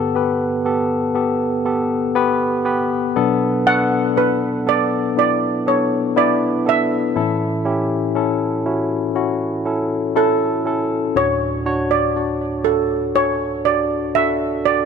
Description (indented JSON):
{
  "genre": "pop",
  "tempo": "60 BPM",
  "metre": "4/4",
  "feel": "straight",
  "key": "D major",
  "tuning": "A4 = 440 Hz",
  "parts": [
    { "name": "steel pan", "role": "melody", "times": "0.0-14.9 s", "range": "A4 to F#5", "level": "-19 LUFS", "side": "right 5 dB", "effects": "tape echo" },
    { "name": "barky tine electric piano", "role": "accompaniment", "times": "0.0-14.9 s", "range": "D2 to D5", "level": "-18 LUFS", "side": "moving between left 7 dB and right 1 dB", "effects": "auto-pan" }
  ],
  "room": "moderate lush hall reverb, RT60 2.5 s",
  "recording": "none",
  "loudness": "-16 LUFS",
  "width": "side -6 dB against mid",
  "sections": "0.0-14.9 A section",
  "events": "none",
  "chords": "0.0 Gadd9; 3.2 Bm7; 7.2 A; 11.2 Dmaj7"
}